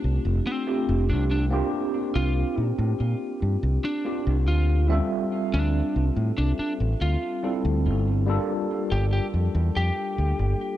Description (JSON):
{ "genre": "vaporwave", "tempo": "71 BPM", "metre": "4/4", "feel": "straight", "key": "D minor", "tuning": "A4 = 441 Hz", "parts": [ { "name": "tine electric piano", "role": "accompaniment", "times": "0.0-10.8 s", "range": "G3 to E5", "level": "-28 LUFS", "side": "equal", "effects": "medium stereo tremolo, lush chorus, analog delay" }, { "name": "fingered electric bass", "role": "bass", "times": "0.0-10.5 s", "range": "F1 to Bb2", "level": "-23 LUFS", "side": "equal", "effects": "tube saturation" }, { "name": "lightly driven lead guitar", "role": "melody", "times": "0.5-10.8 s", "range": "C4 to G4", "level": "-31 LUFS", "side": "equal", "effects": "tape echo" } ], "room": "light reverb", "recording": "cassette tape", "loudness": "-22 LUFS", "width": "side -13 dB against mid", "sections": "0.0-10.8 A section", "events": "none", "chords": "0.0 F69; 1.5 C7sus4; 4.9 Dm11; 8.3 Gm9" }